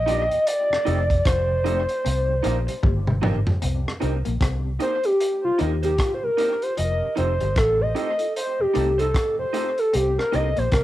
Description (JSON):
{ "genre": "lovers rock reggae", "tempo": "76 BPM", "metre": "4/4", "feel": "swing 61% on 16ths", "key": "C dorian", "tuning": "A4 = 440 Hz", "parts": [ { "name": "hollow clarinet-like synth lead", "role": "melody", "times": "0.0-10.8 s", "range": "F4 to Eb5", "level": "-22 LUFS", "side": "equal", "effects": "chorus, cassette tape, tape echo" }, { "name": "vintage muted fingered electric bass", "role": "bass", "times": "0.0-10.8 s", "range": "F1 to Eb2", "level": "-24 LUFS", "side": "equal", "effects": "none" }, { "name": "mellow tonewheel organ", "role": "accompaniment", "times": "0.1-10.6 s", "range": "Eb2 to F4", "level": "-39 LUFS", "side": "right 8 dB", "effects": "none" }, { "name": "tine electric piano", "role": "accompaniment", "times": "0.1-10.5 s", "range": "A3 to G4", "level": "-35 LUFS", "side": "left 9 dB", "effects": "ensemble chorus, cassette tape, analog delay" }, { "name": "electric guitar through a small old amp", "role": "stabs", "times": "0.1-10.5 s", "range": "Eb4 to D5", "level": "-30 LUFS", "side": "right 10 dB", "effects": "cassette tape" }, { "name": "crunchy breakbeat drum kit", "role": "drums", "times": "0.1-10.8 s", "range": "hi-hat, kick drum, rim click, toms", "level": "-25 LUFS", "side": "equal", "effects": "cassette tape" }, { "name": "electric guitar through a small old amp", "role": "riff", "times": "0.9-10.8 s", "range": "F3 to Eb4", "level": "-34 LUFS", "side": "left 11 dB", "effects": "cassette tape" } ], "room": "moderate studio reverb, RT60 0.6 s", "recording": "home recording on cassette", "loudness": "-20 LUFS", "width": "side -14 dB against mid", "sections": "0.0-3.6 A section; 3.6-10.8 B section", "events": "drum fill 2.8-3.6; soft synth lead solo 3.6-10.8", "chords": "0.5 F7; 2.0 Cm7; 6.8 F7; 9.9 Cm7" }